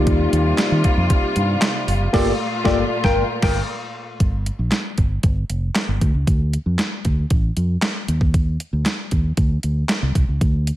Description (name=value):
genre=early-eighties boogie funk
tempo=116 BPM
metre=4/4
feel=straight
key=unclear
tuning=A4 = 444 Hz
part: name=tine electric piano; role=accompaniment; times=0.0-3.6 s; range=Bb3 to G5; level=-21 LUFS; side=left 2 dB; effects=lush chorus
part: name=rich studio string section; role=sustained chords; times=0.0-4.2 s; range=Bb2 to F4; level=-24 LUFS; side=left 1 dB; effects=none
part: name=fingered electric bass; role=bass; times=0.0-10.7 s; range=F1 to Eb3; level=-20 LUFS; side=equal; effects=none
part: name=detuned 8-bit digital drum machine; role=drums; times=0.1-10.8 s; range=crash cymbal, handclaps, hi-hat, kick drum, snare drum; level=-20 LUFS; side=equal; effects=overdrive
room=light reverb, digital ambience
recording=none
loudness=-17 LUFS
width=side -14 dB against mid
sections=0.0-4.2 A section; 4.2-10.8 B section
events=band accent 2.1-4.2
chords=0.0 Ebmaj9; 2.1 Gm9; 4.2 N.C.; 6.0 Dm; 8.1 Cmadd9 (rootless)